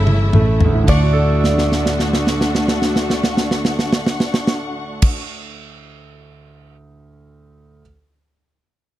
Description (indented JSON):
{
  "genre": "pop ballad",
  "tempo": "54 BPM",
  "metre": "4/4",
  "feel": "straight",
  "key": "D major",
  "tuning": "A4 = 440 Hz",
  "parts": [
    { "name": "direct-recorded clean electric guitar", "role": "melody", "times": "0.0-5.2 s", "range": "C#5 to D5", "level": "-25 LUFS", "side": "equal", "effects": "slapback echo" },
    { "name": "warm studio violin section", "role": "second line", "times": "0.0-5.2 s", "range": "D4 to C#6", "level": "-27 LUFS", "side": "left 2 dB", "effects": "none" },
    { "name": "clear concert grand piano", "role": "accompaniment", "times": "0.0-7.8 s", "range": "D2 to A4", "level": "-25 LUFS", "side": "right 4 dB", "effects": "none" },
    { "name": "warm studio string section", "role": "sustained chords", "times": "0.0-5.2 s", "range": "C#3 to F#4", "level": "-23 LUFS", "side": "left 1 dB", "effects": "none" },
    { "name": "hollow-body short-scale fingered electric bass", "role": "bass", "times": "0.0-5.2 s", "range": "G1 to D2", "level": "-18 LUFS", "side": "equal", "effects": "none" },
    { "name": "modern studio drum kit", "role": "drums", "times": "0.1-6.8 s", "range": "crash cymbal, kick drum, snare drum, toms", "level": "-18 LUFS", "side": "equal", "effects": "none" }
  ],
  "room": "little or no reverb",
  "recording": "dry, close 1970s-style studio recording",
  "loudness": "-14 LUFS",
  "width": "side -14 dB against mid",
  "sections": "0.9-5.3 A section",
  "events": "drum fill 0.0-0.9, 1.4-5.0",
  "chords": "0.0 A; 0.9 Dmaj7"
}